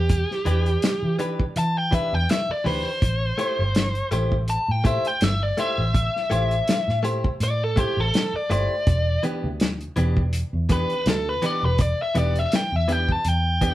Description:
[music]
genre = straight-eighth soul blues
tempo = 82 BPM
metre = 4/4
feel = swing 55% on 16ths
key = E minor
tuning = A4 = 444 Hz
[part]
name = biting lead guitar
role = melody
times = 0.0-13.7 s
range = G4 to A5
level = -24 LUFS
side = left 1 dB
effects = overdrive
[part]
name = vintage muted fingered electric bass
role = bass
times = 0.0-13.7 s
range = E1 to E3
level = -24 LUFS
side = equal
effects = none
[part]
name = warm soul drum kit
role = drums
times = 0.1-13.7 s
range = hi-hat, kick drum, snare drum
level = -23 LUFS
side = equal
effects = none
[part]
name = direct-recorded clean electric guitar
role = stabs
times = 0.5-13.7 s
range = E3 to C5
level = -28 LUFS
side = equal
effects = spring reverb
[sound]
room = moderate studio ambience, RT60 0.5 s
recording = band playing live in one room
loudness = -20 LUFS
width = side -15 dB against mid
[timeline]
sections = 0.0-13.7 A section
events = lead electric guitar solo 0.0-13.7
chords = 0.0 Em7; 3.0 Am7; 8.9 Em7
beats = | 0.10 0.83 1.56 2.29 | 3.02 3.75 4.48 5.21 | 5.95 6.68 7.41 8.14 | 8.87 9.60 10.33 11.06 | 11.79 12.52 13.25

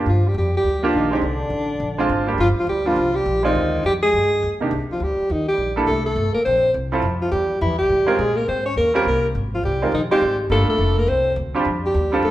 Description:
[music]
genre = jazz, small-group swing and bop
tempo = 207 BPM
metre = 4/4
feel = swing 62% on 8ths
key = C minor from 4.7 s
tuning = A4 = 440 Hz
[part]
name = clear baby grand piano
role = accompaniment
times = 0.0-12.2 s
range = C3 to D5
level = -22 LUFS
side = right 2 dB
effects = none
[part]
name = upright bass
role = bass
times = 0.0-12.3 s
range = F1 to Bb2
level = -24 LUFS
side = equal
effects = none
[part]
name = mellow alto saxophone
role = melody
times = 0.1-12.3 s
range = D4 to Db5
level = -20 LUFS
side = equal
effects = none
[part]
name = breathy trombone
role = second line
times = 0.1-12.3 s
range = D3 to Db4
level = -28 LUFS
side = right 1 dB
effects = none
[sound]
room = wet large studio reverb, RT60 1.3 s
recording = band playing live in one room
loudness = -17 LUFS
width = side -14 dB against mid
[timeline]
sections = 0.0-4.7 A section; 4.7-12.3 B section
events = none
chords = 0.1 Gm7; 1.2 Amadd11; 1.8 Bb7; 2.4 Ebmaj13/G; 3.6 Dm7b5; 4.1 Gm; 4.7 Cm9; 5.9 C5; 7.0 Fmaj7; 8.2 Abadd9; 8.8 Eb13; 9.3 Ab69; 10.5 Gm7; 11.1 Csus2; 11.7 F6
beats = | 0.06 0.35 0.64 0.94 | 1.23 1.52 1.81 2.10 | 2.39 2.68 2.98 3.27 | 3.56 3.85 4.14 4.43 | 4.72 5.01 5.30 5.59 | 5.88 6.17 6.45 6.74 | 7.03 7.32 7.61 7.90 | 8.19 8.48 8.77 9.05 | 9.34 9.63 9.92 10.21 | 10.50 10.79 11.08 11.37 | 11.66 11.95 12.24

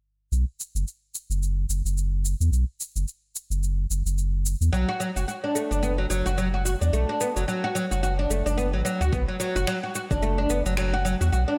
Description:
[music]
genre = organic downtempo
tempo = 109 BPM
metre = 4/4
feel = swing 57% on 16ths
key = B minor pentatonic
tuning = A4 = 440 Hz
[part]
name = warm sub bass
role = bass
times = 0.3-11.5 s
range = F#1 to E2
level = -27 LUFS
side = equal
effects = tube saturation, sidechain pumping
[part]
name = electronic shaker and finger snaps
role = drums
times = 0.3-11.5 s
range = none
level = -35 LUFS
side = equal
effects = none
[part]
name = oud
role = arpeggios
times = 4.7-11.6 s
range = F#3 to F#4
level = -28 LUFS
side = equal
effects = vintage 12-bit sampler grit, tape echo
[part]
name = electronic kick drum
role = drums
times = 9.1-10.2 s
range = none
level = -31 LUFS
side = equal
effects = overdrive
[sound]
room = light reverb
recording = none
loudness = -26 LUFS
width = mono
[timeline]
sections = 0.3-9.1 A section; 9.1-11.6 B section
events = none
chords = 0.3 N.C.; 4.7 Bm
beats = | 0.32 0.87 1.42 1.97 | 2.52 3.07 3.62 4.17 | 4.72 5.28 5.83 6.38 | 6.93 7.48 8.03 8.58 | 9.13 9.68 10.23 10.78 | 11.33

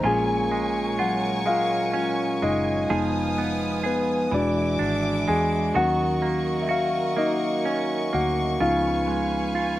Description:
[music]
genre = slow six-eight R&B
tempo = 42 BPM (dotted quarters)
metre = 6/8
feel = straight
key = unclear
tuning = A4 = 440 Hz
[part]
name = semi-hollow electric guitar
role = second line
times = 0.0-9.8 s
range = A#2 to Ab4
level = -28 LUFS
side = right 6 dB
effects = none
[part]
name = mellow tine electric piano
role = accompaniment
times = 0.0-9.8 s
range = E#3 to G#5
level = -24 LUFS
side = left 2 dB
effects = slapback echo
[part]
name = warm studio string section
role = sustained chords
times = 0.0-9.8 s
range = F#4 to Eb6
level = -31 LUFS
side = right 1 dB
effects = none
[part]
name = vintage muted fingered electric bass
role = bass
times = 0.0-9.8 s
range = E1 to E2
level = -31 LUFS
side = right 1 dB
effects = none
[sound]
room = little or no reverb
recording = recorded outdoors, with no room sound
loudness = -21 LUFS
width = side -14 dB against mid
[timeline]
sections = 0.0-9.8 A section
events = tine electric piano solo 0.0-9.8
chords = 0.0 A#m7; 2.9 Fm7b5; 4.3 E9; 5.8 D#m7; 8.6 C#7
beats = | 0.04 1.47 | 2.89 4.32 | 5.75 7.18 | 8.61

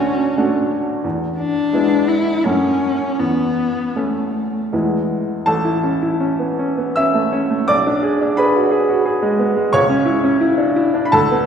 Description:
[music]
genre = classical, romantic duo for cello and grand piano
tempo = 78-90 BPM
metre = 3/4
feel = rubato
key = A major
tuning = A4 = 439 Hz
[part]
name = rich cello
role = melody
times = 0.0-4.7 s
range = A3 to E4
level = -19 LUFS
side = left 2 dB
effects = none
[part]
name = bright baby grand piano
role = accompaniment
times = 0.0-11.5 s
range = A1 to E6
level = -16 LUFS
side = equal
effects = none
[sound]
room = wet concert hall reverb, RT60 2.5 s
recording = recorded in a church or concert hall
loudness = -15 LUFS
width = side -7 dB against mid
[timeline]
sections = 0.0-5.5 A section; 5.5-11.5 B section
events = none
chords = 0.0 Dmaj7; 1.0 E7; 2.4 F#m; 3.2 A/E; 4.7 E; 5.5 A; 7.7 G#dim/B; 9.8 C#m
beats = 0.37 | 1.04 1.73 2.44 | 3.19 3.96 4.73 | 5.47 6.20 6.96 | 7.68 8.38 9.06 | 9.75 10.44 11.14

